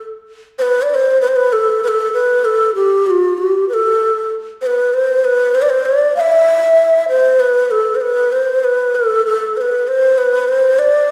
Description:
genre	arabic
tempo	97 BPM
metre	3/4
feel	straight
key	unclear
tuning	A4 = 440 Hz
part	breathy low ney	solo	0.6-11.1 s	F4+46c to F5	-14 LUFS	equal	none
room	wet recital hall reverb, RT60 1.3 s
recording	heard from further back in the room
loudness	-14 LUFS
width	mono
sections	0.6-11.1 A section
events	none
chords	none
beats	| 0.58 1.21 1.83 | 2.45 3.07 3.69 | 4.30 4.92 5.54 | 6.16 6.78 7.40 | 8.01 8.63 9.25 | 9.86 10.48 11.10

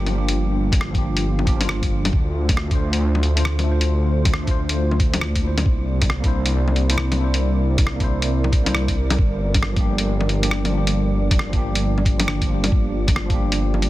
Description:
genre	future garage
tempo	136 BPM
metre	4/4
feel	swing 62% on 16ths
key	G dorian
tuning	A4 = 440 Hz
part	tine electric piano	accompaniment	0.0-13.9 s	F3 to C5	-28 LUFS	left 1 dB	medium stereo tremolo, vintage 12-bit sampler grit, sidechain pumping, analog delay
part	dark analog pad	sustained chords	0.0-13.9 s	G3 to D5	-28 LUFS	right 1 dB	chorus, sidechain pumping
part	swelling detuned saw bass	bass	0.0-13.9 s	G1 to D2	-21 LUFS	equal	sidechain pumping
part	lo-fi sampler-style drum kit	drums	0.1-13.9 s	bongos, hi-hat, rim click	-26 LUFS	left 2 dB	small room reverb, soft clipping on snare
part	electronic kick drum	drums	0.7-13.4 s	none	-20 LUFS	equal	small room reverb
room	digital ambience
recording	dense, heavily limited modern master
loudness	-17 LUFS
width	side -16 dB against mid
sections	0.0-13.9 A section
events	none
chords	0.0 Gm7; 2.1 Dm7; 5.7 C9; 9.2 Gm7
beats	| 0.37 0.81 1.25 1.69 | 2.13 2.57 3.01 3.45 | 3.90 4.34 4.78 5.22 | 5.66 6.10 6.54 6.98 | 7.42 7.87 8.31 8.75 | 9.19 9.63 10.07 10.51 | 10.95 11.40 11.84 12.28 | 12.72 13.16 13.60

